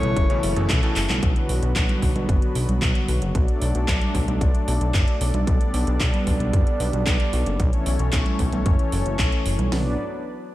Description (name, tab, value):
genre	italo disco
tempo	113 BPM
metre	4/4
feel	straight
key	B minor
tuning	A4 = 440 Hz
part	warm analog pad	sustained chords	0.0-10.0 s	C#3 to D5	-27 LUFS	left 1 dB	chorus
part	bright electric grand piano	stabs	0.0-1.0 s	B2 to C#5	-31 LUFS	equal	ping-pong delay
part	fat analog bass	bass	0.0-10.0 s	F#1 to B1	-24 LUFS	equal	none
part	house drum kit	drums	0.0-9.7 s	congas, handclaps, hi-hat	-28 LUFS	right 2 dB	studio ambience
part	house drum kit	drums	0.2-9.8 s	hi-hat, kick drum, snare drum, toms	-22 LUFS	equal	studio ambience
room	light reverb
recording	none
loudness	-19 LUFS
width	side -15 dB against mid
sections	0.0-1.2 A section; 1.2-9.7 B section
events	drum fill 1.0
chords	0.0 A; 1.2 Bm; 3.4 D/B; 5.5 Gadd9/B; 7.6 A/B; 9.7 Bm